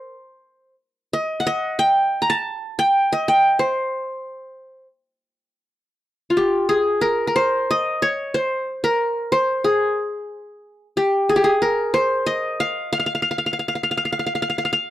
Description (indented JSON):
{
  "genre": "turkish",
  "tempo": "183 BPM (eighths)",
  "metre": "7/8",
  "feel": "straight",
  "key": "C makam nikriz, F makam nihavent from 6.0 s",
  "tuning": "A4 = 441 Hz",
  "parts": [
    { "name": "qanun", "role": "solo", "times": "0.0-14.9 s", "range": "F4 to Bb5", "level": "-18 LUFS", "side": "equal", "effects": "none" }
  ],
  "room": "light reverb",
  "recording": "dry, close 1970s-style studio recording",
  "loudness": "-18 LUFS",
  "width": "side -14 dB against mid",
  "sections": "0.0-6.0 A section; 6.0-14.9 B section",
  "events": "none",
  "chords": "none"
}